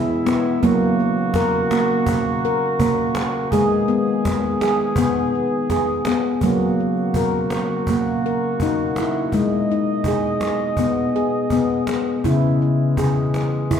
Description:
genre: world meditative, meditative tuned percussion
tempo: 83 BPM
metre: 4/4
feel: straight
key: unclear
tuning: A4 = 439 Hz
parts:
  - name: mellow brass ensemble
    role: sustained chords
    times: 0.0-13.8 s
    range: B2 to D#5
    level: -25 LUFS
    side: right 2 dB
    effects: stereo widening
  - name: handpan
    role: arpeggios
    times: 0.0-13.8 s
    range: C#3 to A#4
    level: -18 LUFS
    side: left 1 dB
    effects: ping-pong delay
  - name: cajon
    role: percussion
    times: 0.3-13.8 s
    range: none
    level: -26 LUFS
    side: right 1 dB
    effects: none
room: wet echo chamber reverb, RT60 1.6 s, small room ambience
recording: none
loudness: -17 LUFS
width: side -8 dB against mid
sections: 0.0-6.4 A section; 6.4-13.8 B section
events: none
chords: 0.0 E; 0.6 F#; 3.5 G#m; 6.4 F#; 9.3 G#m; 12.2 C#m

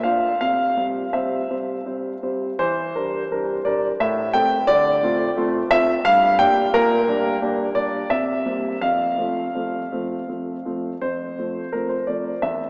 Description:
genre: classical-period piano sonatina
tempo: 81-88 BPM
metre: 3/4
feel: rubato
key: F major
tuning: A4 = 439 Hz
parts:
  - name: warm grand piano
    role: solo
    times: 0.0-12.7 s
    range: E2 to G5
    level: -22 LUFS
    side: equal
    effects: none
room: wet cathedral reverb, RT60 5.4 s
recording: in a vast, echoing space, small speaker sound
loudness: -22 LUFS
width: mono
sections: 0.0-11.0 A section; 11.0-12.7 A section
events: none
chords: 0.4 C; 2.6 Em7b5; 4.0 Am; 4.7 Dm7; 6.0 Gm; 6.7 Gm/Bb; 8.1 C7; 8.8 F

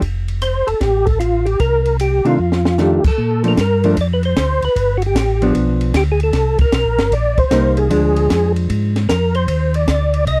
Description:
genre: soul jazz organ trio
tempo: 152 BPM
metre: 4/4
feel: swing 66% on 8ths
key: F major, Bb major from 3.2 s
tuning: A4 = 440 Hz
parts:
  - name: mellow tonewheel organ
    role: bass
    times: 0.0-10.4 s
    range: F1 to C3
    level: -20 LUFS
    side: equal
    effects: slow rotary speaker
  - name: compact cocktail drum kit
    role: drums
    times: 0.0-10.4 s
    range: crash cymbal, hi-hat, kick drum, ride cymbal, snare drum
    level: -23 LUFS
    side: equal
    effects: none
  - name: percussive tonewheel organ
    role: melody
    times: 0.4-10.4 s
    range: F4 to Eb5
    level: -20 LUFS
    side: equal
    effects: slow rotary speaker, chorus vibrato
  - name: hollow-body jazz guitar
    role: accompaniment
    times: 2.2-9.0 s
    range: Eb3 to Eb4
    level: -20 LUFS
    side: equal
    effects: none
room: little or no reverb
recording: dry, close 1970s-style studio recording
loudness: -16 LUFS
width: mono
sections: 0.0-3.2 A section; 3.2-10.4 B section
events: drum fill 2.4-2.8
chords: 0.0 F; 1.6 Cm7; 2.4 F6; 3.2 Bbmaj7; 4.8 G7; 6.3 Cm7; 7.9 Ddim; 9.5 Eb5

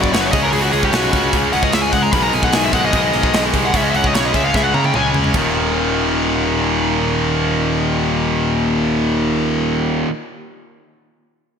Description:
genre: heavy metal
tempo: 149 BPM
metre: 4/4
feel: straight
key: Eb minor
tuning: A4 = 440 Hz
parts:
  - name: high-gain lead guitar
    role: melody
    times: 0.0-5.1 s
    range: Gb4 to Cb6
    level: -20 LUFS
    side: left 2 dB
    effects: distortion
  - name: heavy high-gain guitar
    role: riff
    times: 0.0-10.1 s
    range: Eb2 to Db4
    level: -20 LUFS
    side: right 10 dB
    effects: distortion
  - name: tight distorted guitar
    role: riff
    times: 0.0-10.1 s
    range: Eb2 to Db4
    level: -20 LUFS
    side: left 10 dB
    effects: distortion
  - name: fuzz picked electric bass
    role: bass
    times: 0.0-10.0 s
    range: Eb1 to Db3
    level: -22 LUFS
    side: equal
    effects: overdrive
  - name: modern studio drum kit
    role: drums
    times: 0.0-5.4 s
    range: crash cymbal, hi-hat, kick drum, snare drum, toms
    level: -21 LUFS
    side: equal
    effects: gated reverb
room: moderate lush hall reverb, RT60 2.0 s, small room ambience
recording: bright 1980s-style digital production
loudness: -14 LUFS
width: side -7 dB against mid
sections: 0.0-5.3 A section; 5.3-8.6 B section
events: lead electric guitar solo 0.0-5.3; drum fill 4.5-5.3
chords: 0.3 Db5; 2.1 Abm/Cb; 3.7 Db5; 5.3 Eb5

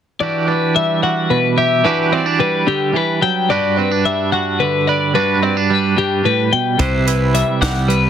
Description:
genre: math rock and midwest emo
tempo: 73 BPM (dotted quarters)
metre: 6/8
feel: straight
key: unclear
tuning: A4 = 438 Hz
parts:
  - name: twangy electric guitar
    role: accompaniment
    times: 0.2-8.1 s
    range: G2 to B4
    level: -17 LUFS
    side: right 6 dB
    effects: tremolo
  - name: twelve-string electric guitar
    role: arpeggios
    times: 0.2-8.1 s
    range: G4 to G5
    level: -17 LUFS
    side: left 7 dB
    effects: tape echo
  - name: fuzz fingered electric bass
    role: bass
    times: 6.8-8.1 s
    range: C2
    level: -19 LUFS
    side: equal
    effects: overdrive
  - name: compact cocktail drum kit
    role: drums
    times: 6.8-8.0 s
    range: hi-hat, kick drum, snare drum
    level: -21 LUFS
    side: equal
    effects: none
room: light reverb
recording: dense, heavily limited modern master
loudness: -14 LUFS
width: side -9 dB against mid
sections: 0.2-8.1 A section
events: none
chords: 0.2 Em9; 3.5 Gmaj7; 6.8 Cmaj7

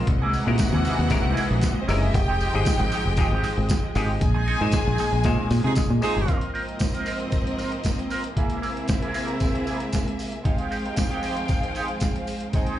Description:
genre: disco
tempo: 116 BPM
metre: 4/4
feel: straight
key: unclear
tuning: A4 = 443 Hz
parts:
  - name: auto-wah clav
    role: accompaniment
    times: 0.0-6.3 s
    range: Bb2 to Ab5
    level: -29 LUFS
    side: left 7 dB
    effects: slapback echo
  - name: clean electric guitar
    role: accompaniment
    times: 0.0-12.8 s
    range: Ab3 to Bb4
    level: -31 LUFS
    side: right 4 dB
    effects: wah, tremolo, slapback echo
  - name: clear studio string section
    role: sustained chords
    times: 0.0-12.8 s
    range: F2 to G5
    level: -30 LUFS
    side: equal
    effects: none
  - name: fingered electric bass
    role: bass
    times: 0.0-6.3 s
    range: F1 to C3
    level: -23 LUFS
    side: equal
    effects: none
  - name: warm symphonic violin section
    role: second line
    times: 0.1-12.8 s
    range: Bb3 to Ab5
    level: -31 LUFS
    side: left 1 dB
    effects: slapback echo
  - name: boom bap sampler-style drum kit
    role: drums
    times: 0.1-12.8 s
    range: hi-hat, kick drum, snare drum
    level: -26 LUFS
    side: equal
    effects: none
  - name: tambourine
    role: percussion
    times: 0.3-12.7 s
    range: none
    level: -40 LUFS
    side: right 4 dB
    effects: none
  - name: warm horn section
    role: stabs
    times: 5.6-6.4 s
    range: Eb4 to Ab4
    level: -27 LUFS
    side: right 3 dB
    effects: slapback echo
room: little or no reverb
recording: live gig heard through the venue's PA, club reverb, nothing above 10.6 kHz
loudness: -21 LUFS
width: side -12 dB against mid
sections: 0.0-6.3 A section; 6.3-12.8 B section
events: band accent 4.2-6.3; clav fill 4.7-6.3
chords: 0.1 C7alt; 2.1 Fm9; 4.2 Bb9sus4; 6.3 Ab69; 8.4 Caug7; 10.5 Fm9

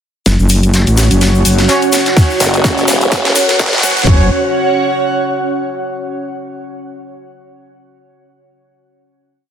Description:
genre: bass house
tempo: 126 BPM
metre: 4/4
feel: swing 56% on 16ths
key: unclear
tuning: A4 = 442 Hz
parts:
  - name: deep dark ambient pad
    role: sustained chords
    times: 1.3-4.3 s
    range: C#4 to C#5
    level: -20 LUFS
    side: right 3 dB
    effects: chorus, built-in reverb, sidechain pumping
  - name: metallic wobble bass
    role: bass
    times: 0.3-4.3 s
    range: F#1 to A1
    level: -11 LUFS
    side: equal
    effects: chorus, tube saturation, sidechain pumping
  - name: garage drum kit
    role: drums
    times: 0.3-4.1 s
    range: hi-hat, snare drum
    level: -17 LUFS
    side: left 1 dB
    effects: high-pass filter on snare, high-pass filter on hats
  - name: warm soul drum kit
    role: drums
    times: 0.3-4.1 s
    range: hi-hat, snare drum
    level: -23 LUFS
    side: equal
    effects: none
  - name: egg shaker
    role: percussion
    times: 0.3-4.1 s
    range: none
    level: -21 LUFS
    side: left 4 dB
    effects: none
  - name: riser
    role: sound effects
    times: 1.4-4.1 s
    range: none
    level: -23 LUFS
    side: left 1 dB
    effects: none
  - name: airy breathy pad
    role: texture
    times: 0.3-5.9 s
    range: C#4 to F#5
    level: -18 LUFS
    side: right 1 dB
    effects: chorus, sidechain pumping
  - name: warm horn section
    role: stabs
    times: 1.7-4.3 s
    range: C#4 to F#5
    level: -21 LUFS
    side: right 1 dB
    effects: sidechain pumping, low-pass filter, dub echo
  - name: garage drum kit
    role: drums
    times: 2.2-4.2 s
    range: kick drum, toms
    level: -11 LUFS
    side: equal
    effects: none
  - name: formant-sweep wobble bass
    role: bass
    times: 2.4-3.8 s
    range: E1 to F#1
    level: -15 LUFS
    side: equal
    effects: chorus, tube saturation, sidechain pumping
room: moderate plate reverb, RT60 1.6 s, small room ambience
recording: dense, heavily limited modern master, high-pass filter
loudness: -10 LUFS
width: side -9 dB against mid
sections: 0.3-4.1 build; 4.1-6.0 final chord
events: build-up 0.3-4.1; drum fill 0.3-4.1; filter sweep 0.3-4.1; riser 1.4-4.1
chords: 0.3 F#5

